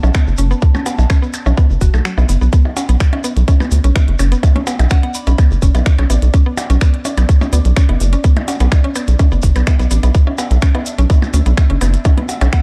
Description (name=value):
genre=minimal techno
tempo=126 BPM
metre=4/4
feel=straight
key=B minor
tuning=A4 = 440 Hz
part: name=mallet-like synth pluck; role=riff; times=0.0-12.6 s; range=F#3 to F#4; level=-25 LUFS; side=equal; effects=chorus, vintage 12-bit sampler grit, sidechain pumping, digital delay
part: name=rubbery square bass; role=bass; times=0.0-12.5 s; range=F#1 to D2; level=-14 LUFS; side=equal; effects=sidechain pumping
part: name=percussion blips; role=percussion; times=0.0-12.5 s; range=none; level=-28 LUFS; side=equal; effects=studio reverb
part: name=shekere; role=percussion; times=0.0-12.6 s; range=none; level=-34 LUFS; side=equal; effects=none
part: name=warbly tape-like pad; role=texture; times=0.0-2.6 s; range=D5 to A5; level=-39 LUFS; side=equal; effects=chorus, built-in reverb, sidechain pumping
part: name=electronic kick drum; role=drums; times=0.1-12.6 s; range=none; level=-14 LUFS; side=equal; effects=studio reverb
part: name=minimal click drum kit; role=drums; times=0.1-12.6 s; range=finger snaps, hi-hat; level=-28 LUFS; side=equal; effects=studio reverb
part: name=pulsing gated texture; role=texture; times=2.5-12.6 s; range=D4 to E5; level=-36 LUFS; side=equal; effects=chorus, built-in reverb, sidechain pumping
part: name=soft synth bell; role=melody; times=4.9-5.3, 12.5-12.6 s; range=F#5 to B5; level=-31 LUFS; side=equal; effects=chorus, tape echo
room=digital ambience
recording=dark, warm production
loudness=-13 LUFS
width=mono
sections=0.0-2.5 A section; 2.5-12.6 B section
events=kick drops out 2.1-2.5; drop 2.5-12.6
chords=0.0 Bm7; 2.5 Bm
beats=0.15 | 0.62 1.10 1.57 2.05 | 2.53 3.00 3.48 3.96 | 4.43 4.91 5.38 5.86 | 6.34 6.81 7.29 7.76 | 8.24 8.72 9.19 9.67 | 10.15 10.62 11.10 11.57 | 12.05 12.53